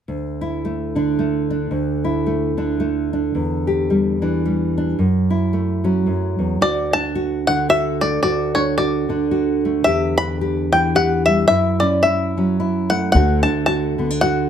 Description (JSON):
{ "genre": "folk", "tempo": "110 BPM", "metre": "3/4", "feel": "swing 58% on 8ths", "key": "D major", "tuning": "A4 = 441 Hz", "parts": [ { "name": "nylon-string guitar", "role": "accompaniment", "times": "0.1-14.5 s", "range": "D2 to G4", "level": "-18 LUFS", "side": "right 1 dB", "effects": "none" }, { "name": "bluegrass banjo", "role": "melody", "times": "6.6-14.5 s", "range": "C#5 to B5", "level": "-18 LUFS", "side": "left 1 dB", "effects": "none" }, { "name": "upright bass", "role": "bass", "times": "13.1-13.4 s", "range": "D2", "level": "-15 LUFS", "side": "equal", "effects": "none" } ], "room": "light reverb", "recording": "close, detailed microphones", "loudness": "-16 LUFS", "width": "side -8 dB against mid", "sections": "0.1-6.6 A section; 6.6-14.5 B section", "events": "none", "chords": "0.1 D5; 3.4 Em7; 5.0 F#m7; 6.6 D; 9.9 Em7; 11.5 F#m7; 13.1 D" }